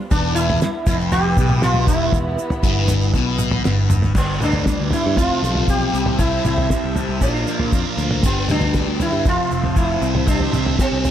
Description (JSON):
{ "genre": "psychedelic rock", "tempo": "118 BPM", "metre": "4/4", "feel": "straight", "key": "unclear", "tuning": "A4 = 440 Hz", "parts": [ { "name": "clear studio string section", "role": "sustained chords", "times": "0.0-11.1 s", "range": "E3 to G5", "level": "-30 LUFS", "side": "right 1 dB", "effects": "none" }, { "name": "sitar", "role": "melody", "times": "0.1-11.1 s", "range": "B3 to G4", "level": "-23 LUFS", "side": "right 1 dB", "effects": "tape echo" }, { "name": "thick fuzz guitar", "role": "riff", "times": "0.1-11.1 s", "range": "E2 to C4", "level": "-21 LUFS", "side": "left 1 dB", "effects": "distortion, phaser" }, { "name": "picked electric bass", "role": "bass", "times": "0.1-11.0 s", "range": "E1 to Bb2", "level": "-23 LUFS", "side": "equal", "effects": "none" }, { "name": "cloth-damped thuddy drum kit", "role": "drums", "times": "0.1-11.1 s", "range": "crash cymbal, kick drum, snare drum, toms", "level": "-20 LUFS", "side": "equal", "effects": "none" }, { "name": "tube shaker", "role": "percussion", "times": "0.1-11.1 s", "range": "none", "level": "-37 LUFS", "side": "right 18 dB", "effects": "none" } ], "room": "light reverb, small room ambience", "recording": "none", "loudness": "-16 LUFS", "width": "side -10 dB against mid", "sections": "0.0-4.2 A section; 4.2-11.1 B section", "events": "drum fill 3.7-4.2", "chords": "0.1 E5; 4.2 G; 5.2 F; 5.9 C6; 7.2 Bb; 8.2 G; 9.3 F; 10.0 C6" }